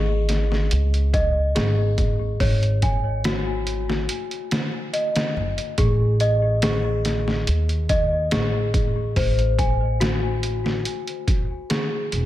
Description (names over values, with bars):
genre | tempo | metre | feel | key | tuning
trip hop | 71 BPM | 4/4 | straight | unclear | A4 = 440 Hz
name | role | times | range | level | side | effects
worn celesta | arpeggios | 0.0-12.3 s | F#4 to G#5 | -25 LUFS | left 2 dB | low-pass filter, ping-pong delay
upright bass | bass | 0.0-12.3 s | E1 to D#2 | -22 LUFS | equal | tube saturation
trip hop sampler-style drum kit | drums | 0.3-12.3 s | hi-hat, kick drum, snare drum | -24 LUFS | equal | overdrive
room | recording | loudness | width
moderate plate reverb, RT60 2.4 s | dreamy mix soaked in reverb | -19 LUFS | side -14 dB against mid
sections
0.0-12.3 A section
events
none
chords
0.0 G#5; 5.8 Am